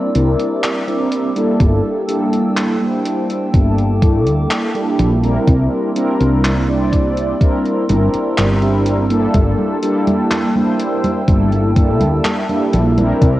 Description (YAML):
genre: vaporwave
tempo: 62 BPM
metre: 4/4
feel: straight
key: G dorian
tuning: A4 = 440 Hz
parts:
  - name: mellow synth brass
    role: accompaniment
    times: 0.0-13.4 s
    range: G3 to D5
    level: -16 LUFS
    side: equal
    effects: phaser, wide subtle chorus, cassette tape, tape echo
  - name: warbly tape-like pad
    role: sustained chords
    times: 0.0-13.4 s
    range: Bb3 to E6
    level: -25 LUFS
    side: right 1 dB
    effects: chorus, built-in reverb, cassette tape
  - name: gated 80s digital drum machine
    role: drums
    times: 0.1-13.4 s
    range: congas, handclaps, hi-hat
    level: -23 LUFS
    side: equal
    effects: gated reverb, cassette tape
  - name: woody fretless electric bass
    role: bass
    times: 0.2-13.4 s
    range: G1 to D2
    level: -16 LUFS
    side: equal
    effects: lush chorus
  - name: electronic kick drum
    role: drums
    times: 1.6-13.4 s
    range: none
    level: -14 LUFS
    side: equal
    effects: cassette tape
room: moderate lush hall reverb, RT60 3.1 s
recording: home recording on cassette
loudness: -13 LUFS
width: side -15 dB against mid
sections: 0.0-13.4 A section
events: none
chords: 0.0 C9; 1.6 Gm69